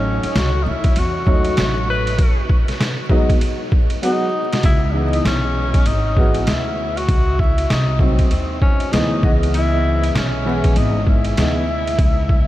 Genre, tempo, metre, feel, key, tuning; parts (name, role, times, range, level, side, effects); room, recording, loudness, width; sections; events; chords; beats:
hip hop, jazz-hop; 98 BPM; 4/4; swing 62% on 16ths; C# minor; A4 = 440 Hz
breathy tenor saxophone; melody; 0.0-12.5 s; B#3 to B4; -23 LUFS; left 2 dB; tape echo
warm upright piano; accompaniment; 0.0-11.6 s; E3 to D#5; -23 LUFS; equal; ensemble chorus
upright bass; bass; 0.0-12.5 s; G#1 to E2; -21 LUFS; equal
trip hop sampler-style drum kit; drums; 0.2-12.5 s; hi-hat, kick drum, ride cymbal, snare drum; -18 LUFS; equal
moderate huge ambient reverb, RT60 8.4 s; dreamy mix soaked in reverb, vinyl crackle; -15 LUFS; side -15 dB against mid
0.0-4.6 A section; 4.6-12.5 B section
drum fill 4.0-4.6
0.0 D#m7b5/A; 2.2 G#m7; 4.6 C#m9; 7.1 G# (rootless); 9.2 C#m9
0.35 0.96 1.58 | 2.19 2.80 3.41 4.03 | 4.64 5.25 5.86 6.47 | 7.09 7.70 8.31 8.92 | 9.54 10.15 10.76 11.37 | 11.98